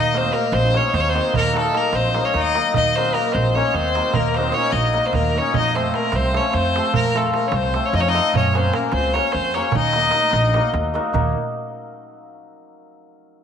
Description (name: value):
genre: balkan folk, Balkan wedding band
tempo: 300 BPM (eighths)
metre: 7/8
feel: straight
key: Eb dorian sharp4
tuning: A4 = 438 Hz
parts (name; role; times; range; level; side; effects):
- bright fiddle; melody; 0.0-10.7 s; A4 to Eb5; -21 LUFS; equal; slapback echo
- accordion; second line; 0.0-10.7 s; A3 to Eb4; -25 LUFS; left 8 dB; none
- upright bass; bass; 0.0-11.3 s; Bb1 to Gb2; -23 LUFS; right 2 dB; none
- cimbalom; accompaniment; 0.1-11.3 s; F3 to Bb4; -23 LUFS; left 2 dB; none
- darbuka; percussion; 0.1-11.3 s; none; -26 LUFS; right 8 dB; none
room: moderate spring reverb, RT60 2.5 s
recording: 1960s-style stereo with parts hard left and right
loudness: -17 LUFS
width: side -8 dB against mid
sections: 0.0-11.1 A section; 11.1-12.5 B section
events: none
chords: 0.0 Ebm; 5.5 F; 8.3 Gb; 9.7 Ebm